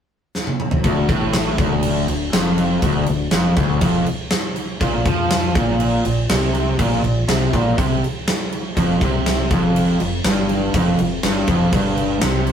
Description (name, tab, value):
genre	classic rock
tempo	121 BPM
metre	4/4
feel	straight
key	D minor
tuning	A4 = 438 Hz
part	big rock drum kit	drums	0.3-12.5 s	crash cymbal, kick drum, snare drum, toms	-20 LUFS	equal	none
part	cranked stack guitar	riff	0.8-12.5 s	D2 to F3	-21 LUFS	right 5 dB	overdrive
part	raw garage guitar	riff	0.8-12.5 s	D2 to F3	-20 LUFS	left 4 dB	overdrive
part	deep dub fingered electric bass	bass	0.8-12.5 s	D1 to F2	-26 LUFS	equal	none
room	light reverb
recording	rough rehearsal-room recording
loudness	-16 LUFS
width	side -8 dB against mid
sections	0.8-12.5 A section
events	drum fill 0.4-0.8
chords	0.0 N.C.; 0.8 Dm; 4.8 Bb5; 8.8 F5